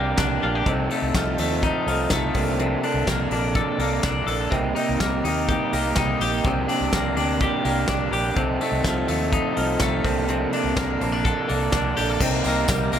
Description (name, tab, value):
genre	jangly indie pop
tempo	125 BPM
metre	4/4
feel	straight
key	C dorian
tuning	A4 = 440 Hz
part	raw garage guitar	accompaniment	0.0-13.0 s	C3 to Bb4	-25 LUFS	right 5 dB	overdrive, dub echo
part	twelve-string electric guitar	arpeggios	0.0-13.0 s	C3 to A4	-24 LUFS	left 4 dB	dub echo
part	vintage muted fingered electric bass	bass	0.0-13.0 s	Bb1 to Eb2	-28 LUFS	equal	none
part	soft brush drum kit	drums	0.2-13.0 s	crash cymbal, hi-hat, kick drum, snare drum	-27 LUFS	equal	dub echo
part	tambourine	percussion	12.2-13.0 s	none	-37 LUFS	right 8 dB	none
room	light reverb, small room reverb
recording	echo-heavy mix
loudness	-20 LUFS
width	side -9 dB against mid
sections	0.0-12.2 A section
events	none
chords	0.0 Gm7/C; 0.7 F7/C; 2.4 Bbmaj7; 4.5 Cm7; 6.4 Gm7/C; 8.4 F7/C; 10.0 Bbmaj7; 12.2 Cm7